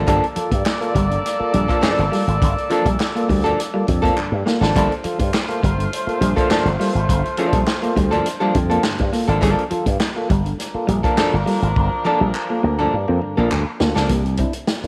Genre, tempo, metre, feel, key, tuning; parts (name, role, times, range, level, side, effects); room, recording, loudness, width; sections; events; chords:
funk; 103 BPM; 4/4; straight; G minor; A4 = 440 Hz
archtop guitar, miked and amplified; accompaniment; 0.0-14.1 s; F3 to A4; -25 LUFS; equal
slap bass with an envelope filter; bass; 0.0-14.9 s; G1 to G2; -22 LUFS; equal
mellow horn section; second line; 0.1-13.8 s; F3 to D5; -28 LUFS; equal
electric guitar at the edge of break-up; riff; 0.1-14.6 s; F3 to C4; -28 LUFS; equal
tonewheel organ; stabs; 0.1-14.9 s; G2 to A4; -29 LUFS; equal; stopped rotary speaker
vintage drum kit; drums; 0.1-14.9 s; hi-hat, kick drum, snare drum; -25 LUFS; equal
group handclap; percussion; 0.7-13.7 s; -33 LUFS; equal
moderate echo chamber reverb, RT60 2.2 s; -19 LUFS; mono
0.0-14.1 A section
drum fill 4.2-4.8, 11.8-14.1
0.0 Gm9; 14.1 C9